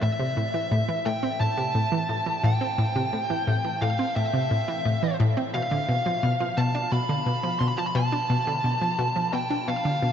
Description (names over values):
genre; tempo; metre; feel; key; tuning
ambient, sequencer-driven space music; 87 BPM; 4/4; straight; A minor; A4 = 440 Hz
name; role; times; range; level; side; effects
fuzz lead guitar; melody; 0.0-10.1 s; E5 to C6; -27 LUFS; equal; distortion, shimmer reverb, tape echo
analog pluck; riff; 0.0-10.1 s; A2 to D4; -25 LUFS; equal; chorus, shimmer reverb, tape echo
room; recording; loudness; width
wet huge ambient reverb, RT60 6.9 s; cassette tape, nothing above 7.7 kHz; -23 LUFS; side -8 dB against mid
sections
0.0-10.1 A section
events
none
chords
0.0 Am; 5.5 Bdim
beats
| 0.02 0.71 1.40 2.09 | 2.78 3.47 4.16 4.85 | 5.54 6.23 6.92 7.61 | 8.30 8.99 9.68